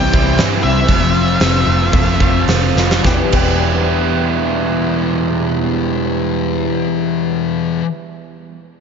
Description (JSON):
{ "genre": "rock, shoegaze and dream pop", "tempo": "105-121 BPM", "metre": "4/4", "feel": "straight", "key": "E phrygian", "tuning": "A4 = 443 Hz", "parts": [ { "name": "octave-fuzz lead guitar", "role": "melody", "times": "0.0-2.4 s", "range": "E5 to G5", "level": "-21 LUFS", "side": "left 2 dB", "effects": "distortion, slapback echo" }, { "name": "fingerpicked twelve-string acoustic guitar", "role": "arpeggios", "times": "0.0-7.8 s", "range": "E3 to A4", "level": "-24 LUFS", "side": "left 10 dB", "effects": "ensemble chorus, slapback echo" }, { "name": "biting overdriven guitar", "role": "riff", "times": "0.0-7.8 s", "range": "C3 to F4", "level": "-19 LUFS", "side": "right 12 dB", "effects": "reverse reverb" }, { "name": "thick fuzz guitar", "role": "riff", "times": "0.0-7.8 s", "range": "E2 to C4", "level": "-19 LUFS", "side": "left 10 dB", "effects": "distortion, wide subtle chorus" }, { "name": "vintage muted fingered electric bass", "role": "bass", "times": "0.0-7.8 s", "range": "E1 to G2", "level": "-19 LUFS", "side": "right 1 dB", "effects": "none" }, { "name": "huge arena drum kit", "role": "drums", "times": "0.1-3.5 s", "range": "crash cymbal, hi-hat, kick drum, snare drum", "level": "-18 LUFS", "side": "right 1 dB", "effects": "none" } ], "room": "light reverb, small room ambience", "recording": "nothing above 7.5 kHz", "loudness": "-13 LUFS", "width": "side -6 dB against mid", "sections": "0.0-3.0 A section; 3.0-7.6 B section", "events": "slowing down 0.0-3.0; drum fill 2.8", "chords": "0.0 Cadd9; 0.9 Fmaj7; 3.0 Em7" }